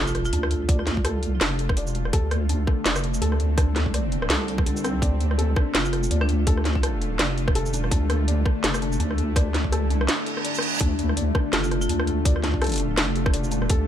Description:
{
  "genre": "half-time drum and bass",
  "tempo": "166 BPM",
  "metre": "4/4",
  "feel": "swing 58% on 16ths, half-time",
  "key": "D minor",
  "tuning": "A4 = 440 Hz",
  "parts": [
    { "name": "marimba with hard mallets", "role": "melody", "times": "0.0-0.6, 5.7-6.5, 11.5-12.2 s", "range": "D4 to F4", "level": "-33 LUFS", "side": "right 2 dB", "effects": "ping-pong delay" },
    { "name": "bowed-like drone", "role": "sustained chords", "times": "0.1-13.9 s", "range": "D3 to F4", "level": "-30 LUFS", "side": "left 2 dB", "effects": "built-in reverb, sidechain pumping" },
    { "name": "felt-muted upright piano", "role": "arpeggios", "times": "0.0-13.9 s", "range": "D3 to D5", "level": "-32 LUFS", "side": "left 4 dB", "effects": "ping-pong delay" },
    { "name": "deep soft wobble bass", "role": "bass", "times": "0.0-13.9 s", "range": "E1 to D2", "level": "-24 LUFS", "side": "equal", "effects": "chorus" },
    { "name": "impact and reverse cymbal", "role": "sound effects", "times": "0.0-0.7, 10.2-10.8 s", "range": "none", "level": "-31 LUFS", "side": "right 4 dB", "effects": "none" },
    { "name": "drum and bass drum kit", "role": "drums", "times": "0.1-13.8 s", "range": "hi-hat, rim click, shaker, snare drum", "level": "-26 LUFS", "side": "equal", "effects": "none" },
    { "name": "electronic kick drum", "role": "drums", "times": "0.7-13.8 s", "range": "none", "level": "-22 LUFS", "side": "equal", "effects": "none" }
  ],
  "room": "light reverb, digital ambience",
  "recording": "none",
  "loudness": "-21 LUFS",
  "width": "side -10 dB against mid",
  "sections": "0.0-13.9 A section",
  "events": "impact 0.0-0.7; reverse cymbal 10.2-10.8",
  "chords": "0.0 Dm"
}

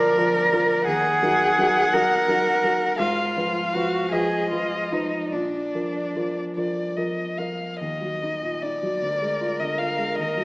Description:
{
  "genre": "classical, slow romantic movement for piano trio",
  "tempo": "48-58 BPM (dotted quarters)",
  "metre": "6/8",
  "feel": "rubato",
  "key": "Eb minor",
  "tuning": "A4 = 441 Hz",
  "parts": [
    { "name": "dark violin", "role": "melody", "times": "0.0-10.4 s", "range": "D5 to Gb5", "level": "-25 LUFS", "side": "left 1 dB", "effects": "none" },
    { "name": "dark cello", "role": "second line", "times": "0.0-10.4 s", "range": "D4 to Bb4", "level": "-23 LUFS", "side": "right 1 dB", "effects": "none" },
    { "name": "dark grand piano", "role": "accompaniment", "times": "0.0-10.4 s", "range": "D2 to Cb5", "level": "-27 LUFS", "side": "equal", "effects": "none" }
  ],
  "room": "wet concert hall reverb, RT60 1.9 s",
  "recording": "small speaker sound",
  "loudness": "-20 LUFS",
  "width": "side -24 dB against mid",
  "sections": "0.0-7.8 A section; 7.8-10.4 B section",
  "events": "none",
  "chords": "0.0 Bb/D; 0.9 Ebm; 3.0 Fdim/Ab; 5.3 Bb; 7.8 Ebm; 9.0 Bb7/D"
}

